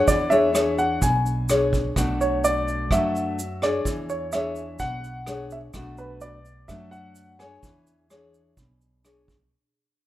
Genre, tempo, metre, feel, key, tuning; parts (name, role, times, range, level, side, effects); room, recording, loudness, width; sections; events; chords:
bossa nova; 127 BPM; 4/4; straight; A4 = 443 Hz
warm concert grand piano; melody; 0.0-9.2 s; B4 to G#5; -25 LUFS; right 1 dB
nylon-string guitar; accompaniment; 0.0-9.5 s; B2 to C#5; -25 LUFS; left 2 dB
upright bass; bass; 0.0-9.5 s; B1 to F#2; -31 LUFS; right 1 dB
vintage brush drum kit; drums; 0.1-9.4 s; hi-hat, kick drum, rim click; -28 LUFS; right 1 dB
tube shaker; percussion; 0.1-9.5 s; -35 LUFS; right 4 dB
light reverb, small room ambience; rough home demo mix; -21 LUFS; side -14 dB against mid
0.0-9.5 A section
fade-out 0.0-9.5
0.1 E6; 2.0 Bm7; 3.8 E13; 5.7 Bm7; 7.6 E6